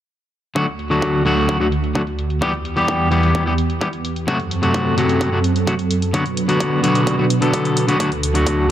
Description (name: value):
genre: EDM, festival progressive house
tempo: 129 BPM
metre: 4/4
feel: straight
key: unclear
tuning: A4 = 441 Hz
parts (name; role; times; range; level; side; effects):
- electric guitar at the edge of break-up; accompaniment; 0.6-8.7 s; C3 to A4; -18 LUFS; left 1 dB; sidechain pumping, tape echo
- lush unison pad; sustained chords; 0.6-8.7 s; D2 to B4; -20 LUFS; right 1 dB; chorus, sidechain pumping
- electronic hi-hat; drums; 0.6-8.6 s; none; -30 LUFS; left 1 dB; low-pass filter on hats
- electronic kick drum; drums; 0.6-8.6 s; none; -26 LUFS; right 1 dB; high-pass filter on kick
room: light reverb, digital ambience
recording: none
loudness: -16 LUFS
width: side -11 dB against mid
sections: 0.6-8.7 A section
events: filter sweep on analog synth pad 0.6-8.7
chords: 0.6 D; 2.4 Em; 4.3 F#dim; 6.1 Bm; 8.0 D